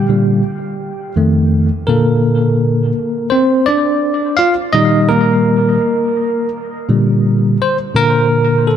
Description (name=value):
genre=hip hop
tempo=84 BPM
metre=4/4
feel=swing 62% on 16ths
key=Bb major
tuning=A4 = 440 Hz
part: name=barky tine electric piano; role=solo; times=0.0-8.8 s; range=F2 to G5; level=-12 LUFS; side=equal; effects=fast stereo tremolo, dub echo
room=moderate echo chamber reverb, RT60 2.1 s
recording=echo-heavy mix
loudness=-12 LUFS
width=side -9 dB against mid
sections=0.0-7.6 A section; 7.6-8.8 B section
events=tine electric piano solo 0.0-7.6, 7.6-8.8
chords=0.0 Bb6; 1.2 F7; 1.9 Bbmaj9; 4.7 Eb/Bb; 6.9 Bb6; 7.6 Bb